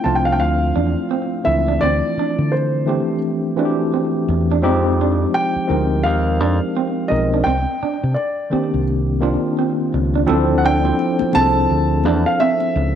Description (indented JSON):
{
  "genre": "R&B, neo-soul",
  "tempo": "85 BPM",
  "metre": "4/4",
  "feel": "swing 61% on 16ths",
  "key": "unclear",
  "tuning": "A4 = 440 Hz",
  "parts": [
    { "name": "warm concert grand piano", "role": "melody", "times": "0.0-13.0 s", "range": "C5 to A5", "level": "-21 LUFS", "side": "equal", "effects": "slapback echo" },
    { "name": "tine electric piano", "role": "accompaniment", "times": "0.0-13.0 s", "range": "Eb3 to C5", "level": "-19 LUFS", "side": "left 1 dB", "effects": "medium stereo tremolo" },
    { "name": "electric guitar through a small old amp", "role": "second line", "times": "0.1-12.8 s", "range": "C4 to D4", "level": "-24 LUFS", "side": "right 8 dB", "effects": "slapback echo" },
    { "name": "fingered electric bass", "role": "bass", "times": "0.1-13.0 s", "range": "B1 to D3", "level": "-19 LUFS", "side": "left 1 dB", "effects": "none" },
    { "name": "congas", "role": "percussion", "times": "10.3-12.7 s", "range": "none", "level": "-28 LUFS", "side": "left 10 dB", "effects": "none" }
  ],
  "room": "moderate echo chamber reverb, RT60 2.1 s",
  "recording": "1960s-style stereo with parts hard left and right",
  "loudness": "-16 LUFS",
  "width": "side -9 dB against mid",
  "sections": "0.0-10.3 A section; 10.3-13.0 B section",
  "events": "none",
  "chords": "0.0 Dm9; 4.6 Fm9; 7.5 Cm9; 10.3 Dm9"
}